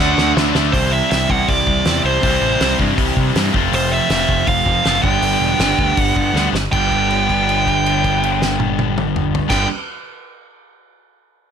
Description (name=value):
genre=punk rock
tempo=160 BPM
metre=4/4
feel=straight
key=G major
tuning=A4 = 440 Hz
part: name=nasal lead guitar with a parked wah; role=melody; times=0.0-9.7 s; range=C5 to G5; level=-18 LUFS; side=right 3 dB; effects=overdrive
part: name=distorted electric guitar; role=riff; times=0.0-9.7 s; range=G2 to G4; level=-21 LUFS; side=left 16 dB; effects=overdrive
part: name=heavy high-gain guitar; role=riff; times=0.0-0.7 s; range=D3 to D4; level=-23 LUFS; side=left 2 dB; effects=distortion
part: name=overdriven semi-hollow guitar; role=riff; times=0.0-9.7 s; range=F2 to D4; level=-22 LUFS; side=right 13 dB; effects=none
part: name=growling picked electric bass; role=bass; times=0.0-9.7 s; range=E1 to C3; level=-21 LUFS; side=left 1 dB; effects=overdrive
part: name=loose indie drum kit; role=drums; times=0.2-9.6 s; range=crash cymbal, hi-hat, kick drum, snare drum, toms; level=-21 LUFS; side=equal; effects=none
room=light reverb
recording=none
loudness=-14 LUFS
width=side -8 dB against mid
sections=0.7-6.7 A section; 6.7-9.7 B section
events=drum fill 0.0-0.7, 6.3-6.7; held note 6.7-9.5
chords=0.0 D; 0.7 C; 3.5 F; 5.0 G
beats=0.36 | 0.73 1.10 1.48 1.85 | 2.22 2.60 2.97 3.35 | 3.72 4.09 4.47 4.84 | 5.22 5.59 5.97 6.34 | 6.72 7.09 7.47 7.84 | 8.22 8.60 8.97 9.35